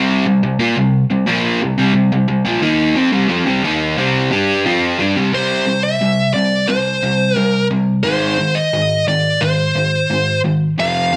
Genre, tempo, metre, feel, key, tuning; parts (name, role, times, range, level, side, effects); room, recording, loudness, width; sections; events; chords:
rock; 88 BPM; 4/4; straight; A4 = 440 Hz
crunchy overdriven guitar; riff; 0.0-11.2 s; F2 to G4; -17 LUFS; equal
high-gain lead guitar; melody; 5.3-11.2 s; C5 to F5; -19 LUFS; equal; distortion, slapback echo
light reverb; -16 LUFS; mono
0.0-5.3 A section; 5.3-11.2 B section
0.0 C5; 8.1 Ab